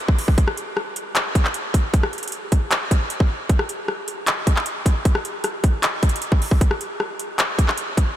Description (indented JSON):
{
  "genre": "hip hop",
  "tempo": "154 BPM",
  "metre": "4/4",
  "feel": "half-time",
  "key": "none",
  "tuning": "none",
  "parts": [
    { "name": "trap drum kit", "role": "drums", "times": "0.1-8.1 s", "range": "handclaps, hi-hat, kick drum, rim click", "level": "-18 LUFS", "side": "equal", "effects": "overdrive" }
  ],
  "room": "moderate huge ambient reverb, RT60 6.9 s",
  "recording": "dreamy mix soaked in reverb",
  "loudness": "-19 LUFS",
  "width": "side -12 dB against mid",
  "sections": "0.0-3.5 A section; 3.5-8.2 A section",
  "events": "none",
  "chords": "none"
}